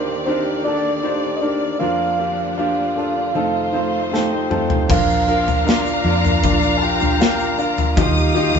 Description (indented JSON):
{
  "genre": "pop ballad",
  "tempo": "78 BPM",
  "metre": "4/4",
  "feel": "straight",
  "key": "Bb major",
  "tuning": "A4 = 440 Hz",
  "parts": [
    { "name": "soft octave-layered synth lead", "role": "melody", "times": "0.0-8.6 s", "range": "Bb4 to A5", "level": "-23 LUFS", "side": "right 1 dB", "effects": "chorus" },
    { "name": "clear concert grand piano", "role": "accompaniment", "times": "0.0-8.6 s", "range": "Eb2 to C5", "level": "-22 LUFS", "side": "left 1 dB", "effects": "none" },
    { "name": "warm studio string section", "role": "sustained chords", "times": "0.0-8.6 s", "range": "Eb3 to F5", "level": "-25 LUFS", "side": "left 1 dB", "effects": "none" },
    { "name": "nylon-string guitar", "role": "arpeggios", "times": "0.0-8.6 s", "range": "F2 to G4", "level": "-27 LUFS", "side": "right 5 dB", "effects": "none" },
    { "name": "modern studio drum kit", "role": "drums", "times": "4.1-8.6 s", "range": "crash cymbal, kick drum, snare drum, toms", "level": "-19 LUFS", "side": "left 1 dB", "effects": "none" },
    { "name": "warm studio violin section", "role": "second line", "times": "4.9-8.6 s", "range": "Bb5 to Eb6", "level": "-25 LUFS", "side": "left 1 dB", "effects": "none" },
    { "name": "vintage muted fingered electric bass", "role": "bass", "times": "4.9-8.6 s", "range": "Bb1 to F2", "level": "-22 LUFS", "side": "left 1 dB", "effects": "none" },
    { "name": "egg shaker", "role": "percussion", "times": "4.9-8.6 s", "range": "none", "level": "-42 LUFS", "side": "left 6 dB", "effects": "none" }
  ],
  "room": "wet studio reverb, RT60 0.5 s",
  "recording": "band playing live in one room, nothing above 7.7 kHz",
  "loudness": "-16 LUFS",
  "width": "side -6 dB against mid",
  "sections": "0.0-4.9 A section; 4.9-8.6 B section",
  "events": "drum fill 4.1-4.9",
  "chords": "0.0 Ebmaj7; 1.8 Bb/F; 3.4 F7; 4.9 Bb; 8.0 Ebadd9"
}